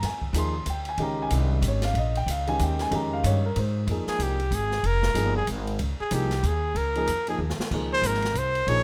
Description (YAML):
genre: modal jazz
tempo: 187 BPM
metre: 3/4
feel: swing 61% on 8ths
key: Bb dorian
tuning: A4 = 440 Hz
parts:
  - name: dark baby grand piano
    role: accompaniment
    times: 0.0-8.8 s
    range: Eb3 to C6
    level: -32 LUFS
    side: equal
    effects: none
  - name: upright bass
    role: bass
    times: 0.0-8.8 s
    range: F1 to Ab2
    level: -29 LUFS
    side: equal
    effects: none
  - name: open jazz drum kit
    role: drums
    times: 0.0-8.8 s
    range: crash cymbal, hi-hat, kick drum, ride cymbal, snare drum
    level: -38 LUFS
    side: equal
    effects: none
  - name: clear trumpet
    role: melody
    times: 4.1-8.8 s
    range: G4 to Db5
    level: -29 LUFS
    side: equal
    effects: none
room: small room reverb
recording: rough home demo mix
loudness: -26 LUFS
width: mono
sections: 0.0-3.9 A section; 3.9-8.8 A section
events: trumpet solo 3.9-8.8; drum fill 7.4-7.7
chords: 0.0 Bbm9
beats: | 0.03 0.35 0.67 | 0.99 1.31 1.63 | 1.95 2.27 2.59 | 2.91 3.23 3.55 | 3.88 4.20 4.51 | 4.84 5.16 5.48 | 5.80 6.12 6.44 | 6.76 7.08 7.40 | 7.72 8.04 8.36 | 8.68